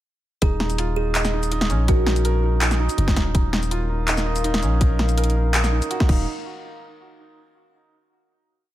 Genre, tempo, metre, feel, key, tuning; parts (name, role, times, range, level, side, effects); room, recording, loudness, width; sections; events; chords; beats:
half-time drum and bass; 164 BPM; 4/4; half-time; Eb minor; A4 = 440 Hz
kalimba; melody; 0.4-2.2 s; Gb4 to Ab4; -29 LUFS; right 2 dB; tape echo
felt-muted upright piano; arpeggios; 0.4-6.3 s; Db4 to Eb5; -29 LUFS; right 4 dB; tape echo
long sustained 808-style bass; bass; 0.4-6.3 s; Eb1 to Bb1; -21 LUFS; equal
drum and bass drum kit; drums; 0.4-6.2 s; crash cymbal, handclaps, hi-hat, shaker, snare drum; -25 LUFS; equal; overdrive, studio reverb
electronic kick drum; drums; 0.4-6.2 s; -19 LUFS; equal; overdrive, studio reverb
dark analog pad; sustained chords; 3.6-6.3 s; Eb4 to F5; -30 LUFS; equal; chorus, sidechain pumping
light reverb, digital ambience; -18 LUFS; side -14 dB against mid
0.4-6.3 drop; 6.3-7.7 final hit
drop 0.4-6.3
0.4 Eb5; 6.3 N.C.
| 0.42 0.79 1.15 1.52 | 1.88 2.25 2.62 2.98 | 3.35 3.71 4.08 4.44 | 4.81 5.18 5.54 5.91 | 6.27